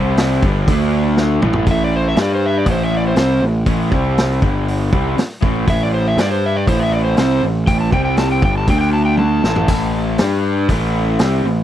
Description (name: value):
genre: blues rock power trio and southern rock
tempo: 120 BPM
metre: 4/4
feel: straight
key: A minor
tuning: A4 = 443 Hz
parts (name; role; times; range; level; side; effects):
- raw garage guitar; riff; 0.0-11.6 s; G2 to G4; -19 LUFS; equal; overdrive
- fuzz picked electric bass; bass; 0.0-11.6 s; G1 to G2; -18 LUFS; equal; overdrive
- vintage drum kit; drums; 0.2-11.3 s; hi-hat, kick drum, snare drum, splash cymbal, toms; -18 LUFS; equal; none
- overdriven slide guitar; melody; 1.7-10.2 s; C5 to A5; -21 LUFS; equal; slapback echo
room: little or no reverb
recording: dry, close 1970s-style studio recording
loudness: -14 LUFS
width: side -11 dB against mid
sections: 0.0-1.7 A section; 1.7-11.6 B section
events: drum fill 1.2-1.7, 9.2-9.7; electric slide guitar solo 1.7-11.6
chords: 0.4 G5; 0.7 D5; 1.4 A5; 2.2 G5; 2.7 Am; 3.9 C5; 4.4 G5; 4.9 Am; 6.2 G5; 6.7 Am; 7.9 C5; 8.4 Gsus2; 8.7 D5; 9.4 A5; 10.2 G5; 10.7 Am